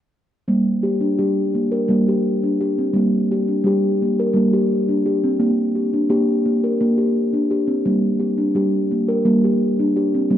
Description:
world meditative; 171 BPM (eighths); 7/8; straight; G minor pentatonic; A4 = 440 Hz
steel tongue drum; solo; 0.5-10.4 s; G3 to Bb4; -16 LUFS; equal
wet echo chamber reverb, RT60 2.5 s; worn, warbling old tape, cassette tape, warbly pitch drift; -16 LUFS; side -11 dB against mid
0.5-10.3 A section
0.5 Gm; 5.4 Bb; 7.9 Gm

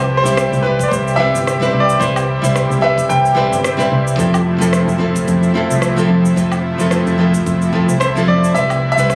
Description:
sunset chillout; 110 BPM; 4/4; swing 56% on 16ths; C major; A4 = 444 Hz
bright grand piano; melody; 0.0-3.9, 8.0-9.2 s; B4 to G5; -19 LUFS; equal; delay
nylon-string guitar; accompaniment; 0.0-9.2 s; F3 to C5; -20 LUFS; equal; digital delay
lush unison pad; sustained chords; 0.0-9.2 s; C3 to B4; -23 LUFS; equal; chorus
fingered electric bass; bass; 0.0-9.2 s; G1 to F2; -21 LUFS; equal
electronic shaker, rim click and woodblock; drums; 0.3-9.2 s; -26 LUFS; equal
electronic kick drum; drums; 0.6-8.7 s; -28 LUFS; equal
light reverb, small room ambience; recorded on a phone in the room, club reverb, compression; -15 LUFS; mono
0.0-9.2 A section
0.0 Cmaj7; 4.2 Fmaj7; 8.6 Cmaj7

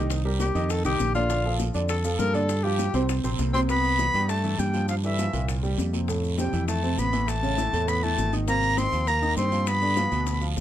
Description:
Afro-Cuban jazz; 201 BPM; 4/4; straight; C major from 3.7 s; A4 = 439 Hz
breathy tenor saxophone; second line; 0.0-10.5 s; E3 to Bb4; -31 LUFS; left 4 dB
warm baby grand piano; accompaniment; 0.0-10.6 s; A2 to Eb5; -30 LUFS; right 1 dB
modern bright fingered electric bass; bass; 0.0-10.6 s; Ab1 to G2; -26 LUFS; right 1 dB
bongos; percussion; 0.1-10.6 s; -37 LUFS; left 7 dB
congas; percussion; 0.1-10.6 s; -36 LUFS; left 2 dB
guiro; percussion; 0.1-10.6 s; -40 LUFS; right 8 dB
maracas; percussion; 0.1-10.6 s; -42 LUFS; left 6 dB
bright reedy silver concert flute; melody; 3.5-10.4 s; E5 to C6; -26 LUFS; left 1 dB
light reverb; close, detailed microphones; -22 LUFS; side -12 dB against mid
0.0-3.7 A section; 3.7-10.6 B section
tenor saxophone solo 0.0-3.7
0.1 Cm7; 0.7 F5; 1.3 Bbmaj7; 2.5 G5; 3.1 Bbsus2; 3.7 Cmaj7; 4.9 Gm7; 5.5 C5; 6.1 Fmaj9; 7.3 A; 8.5 Ab6; 9.7 G

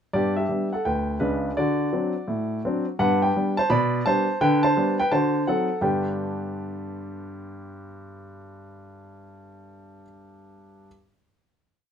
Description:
jazz, stride piano; 169 BPM; 4/4; swing 65% on 8ths; G major; A4 = 440 Hz
warm grand piano; solo; 0.1-10.9 s; C#2 to B5; -22 LUFS; equal
light reverb; minimal, uncompressed stereo recording; -21 LUFS; side -8 dB against mid
0.1-5.8 A section; 5.8-8.7 final chord
0.1 G; 1.6 D7; 3.0 G; 3.7 G/B; 4.4 G/D; 5.1 D7b9; 5.8 G

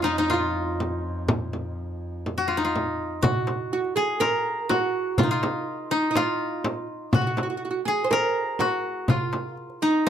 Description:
Arabic maqam ensemble; 123 BPM; 4/4; straight; F maqam kurd from 3.2 s; A4 = 440 Hz
koto; melody; 0.0-10.1 s; Db4 to Bb4; -26 LUFS; left 2 dB
oud; second line; 0.0-10.1 s; Eb4 to C5; -28 LUFS; right 5 dB
rich double bass; drone; 0.0-3.3 s; F2; -33 LUFS; equal
frame drum; percussion; 0.3-10.1 s; -27 LUFS; equal
darbuka; percussion; 3.2-10.1 s; -28 LUFS; left 1 dB
light reverb; -23 LUFS; side -9 dB against mid
0.0-3.2 A section; 3.2-10.1 B section

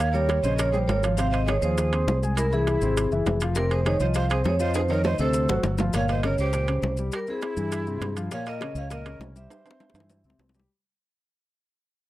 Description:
Afro-Cuban jazz; 202 BPM; 4/4; straight; A4 = 439 Hz
vibraphone with medium hard mallets; melody; 0.0-10.4 s; G#4 to F5; -28 LUFS; right 1 dB
breathy jazz flute; second line; 0.0-10.4 s; E4 to Db5; -34 LUFS; right 3 dB; tape echo
warm concert grand piano; accompaniment; 0.0-10.7 s; Bb2 to C6; -30 LUFS; left 3 dB
fingered electric bass; bass; 0.0-10.7 s; F1 to G2; -26 LUFS; equal
timbales; percussion; 0.0-10.6 s; -33 LUFS; right 4 dB
bongos; percussion; 0.1-10.7 s; -33 LUFS; left 4 dB
maracas; percussion; 0.1-10.7 s; -40 LUFS; left 6 dB
little or no reverb; dry, close 1970s-style studio recording; -22 LUFS; side -16 dB against mid
0.0-5.9 A section; 5.9-10.7 B section
drum fill 4.7-5.9, 9.5-10.7; fade-out 5.9-10.7
0.0 Eb9; 1.2 Ab6; 2.4 Caug; 3.6 F5; 5.3 D7; 5.9 Gdim; 7.1 C; 8.3 Gdim; 9.5 C

